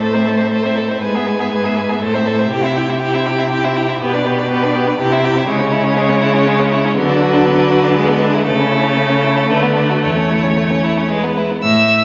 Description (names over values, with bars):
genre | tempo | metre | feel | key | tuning
quick classical-period movement for string quartet | 120 BPM | 3/4 | rubato | A minor, A major from 5.5 s | A4 = 441 Hz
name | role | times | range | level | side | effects
clear violin | melody | 0.0-12.0 s | A4 to E6 | -23 LUFS | equal | none
rich violin | second line | 0.0-12.0 s | G#3 to E5 | -20 LUFS | equal | none
warm viola | accompaniment | 0.0-11.4 s | F#3 to E4 | -21 LUFS | equal | none
warm cello | bass | 0.0-12.0 s | E2 to D3 | -20 LUFS | equal | none
room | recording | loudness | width
wet concert hall reverb, RT60 1.9 s | nothing above 7.7 kHz | -15 LUFS | mono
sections
0.0-11.6 A section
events
none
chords
0.0 Am; 1.0 E/G#; 2.0 Am; 2.5 C; 4.0 G/B; 5.0 C; 5.5 C#m; 7.0 Bm/D; 8.0 E7/D; 8.5 A/C#; 9.5 Bm7/D; 10.0 A/E; 11.1 E